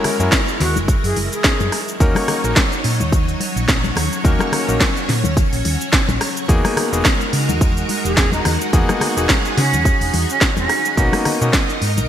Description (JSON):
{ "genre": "nu-disco, nu disco", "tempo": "107 BPM", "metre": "4/4", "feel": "swing 56% on 16ths", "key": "unclear", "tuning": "A4 = 438 Hz", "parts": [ { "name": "clear electric grand piano", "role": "accompaniment", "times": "0.0-11.5 s", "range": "G#3 to A#4", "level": "-23 LUFS", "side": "left 2 dB", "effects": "sidechain pumping, digital delay" }, { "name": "string machine, full ensemble", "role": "sustained chords", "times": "0.0-12.1 s", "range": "F#3 to D#5", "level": "-24 LUFS", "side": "equal", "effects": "ensemble chorus, sidechain pumping" }, { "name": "house drum kit", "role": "drums", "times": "0.0-12.1 s", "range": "cabasa, hi-hat, rim click, snare drum", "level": "-20 LUFS", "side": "equal", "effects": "gated reverb" }, { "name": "congas", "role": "percussion", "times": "0.0-12.1 s", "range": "none", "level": "-28 LUFS", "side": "left 4 dB", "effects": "none" }, { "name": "hollow-body short-scale fingered electric bass", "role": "bass", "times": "0.2-12.1 s", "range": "E1 to C#3", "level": "-21 LUFS", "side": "equal", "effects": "sidechain pumping" }, { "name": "electronic kick drum", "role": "drums", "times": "0.3-11.7 s", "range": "none", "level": "-18 LUFS", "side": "equal", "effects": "none" }, { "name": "breathy mellow jazz flute", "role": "melody", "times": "0.6-1.8, 8.0-11.0 s", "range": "C#4 to G#4", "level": "-24 LUFS", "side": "right 2 dB", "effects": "ping-pong delay" } ], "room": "moderate lush hall reverb, RT60 2.5 s", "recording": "bright 1980s-style digital production", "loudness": "-15 LUFS", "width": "side -10 dB against mid", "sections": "0.0-12.1 A section", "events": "none", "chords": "0.0 F#9; 1.7 D#m7; 6.5 Emaj9#11; 11.0 Bmaj7" }